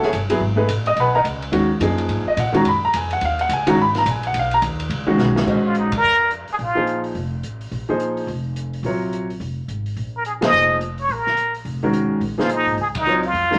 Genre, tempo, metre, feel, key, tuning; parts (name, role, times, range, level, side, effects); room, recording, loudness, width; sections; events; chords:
modal jazz; 213 BPM; 4/4; swing 62% on 8ths; Bb minor from 5.5 s; A4 = 440 Hz
warm concert grand piano; accompaniment; 0.0-13.6 s; C3 to D#6; -21 LUFS; equal
upright bass; bass; 0.0-13.6 s; F1 to A#2; -29 LUFS; equal
open jazz drum kit; drums; 0.0-13.6 s; crash cymbal, hi-hat, kick drum, ride cymbal, snare drum; -32 LUFS; equal
trumpet with plunger mute; melody; 5.7-7.0, 10.2-13.6 s; Eb4 to Eb5; -20 LUFS; equal
wet club reverb, RT60 0.7 s; -20 LUFS; mono
0.0-5.5 A section; 5.5-13.6 B section
drum fill 5.2; band accent 5.9, 10.4, 12.9
0.0 F#m11 (rootless); 1.0 G#m11; 5.5 Bbm11